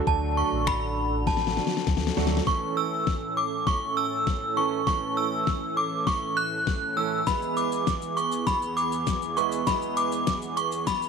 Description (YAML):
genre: dance-pop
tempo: 100 BPM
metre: 4/4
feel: straight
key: A major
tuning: A4 = 440 Hz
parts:
  - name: soft supersaw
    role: sustained chords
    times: 0.0-11.1 s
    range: E2 to A4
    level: -33 LUFS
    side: right 2 dB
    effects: sidechain pumping
  - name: synth chime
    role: melody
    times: 0.1-11.1 s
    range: A5 to F#6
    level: -26 LUFS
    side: right 1 dB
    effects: ensemble chorus, slapback echo
  - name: clear concert grand piano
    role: accompaniment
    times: 0.1-10.6 s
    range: E3 to B4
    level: -32 LUFS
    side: right 13 dB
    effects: sidechain pumping
  - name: sub bass with octave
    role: bass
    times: 0.1-2.4 s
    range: A1 to D2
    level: -29 LUFS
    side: equal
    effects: sidechain pumping
  - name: smooth R&B drum kit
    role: drums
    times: 0.1-11.1 s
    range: finger snaps, hi-hat, kick drum, shaker, snare drum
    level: -28 LUFS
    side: left 5 dB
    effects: none
room: light reverb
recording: 1960s-style stereo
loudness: -24 LUFS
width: side -6 dB against mid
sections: 0.0-2.5 A section; 2.5-11.1 B section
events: drum fill 1.3-2.5, 2.5-11.1; build-up 2.5-11.1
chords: 0.0 D; 2.5 A; 7.3 E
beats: | 0.07 0.67 1.27 1.87 | 2.47 3.07 3.67 4.27 | 4.87 5.47 6.07 6.67 | 7.27 7.87 8.47 9.07 | 9.67 10.27 10.87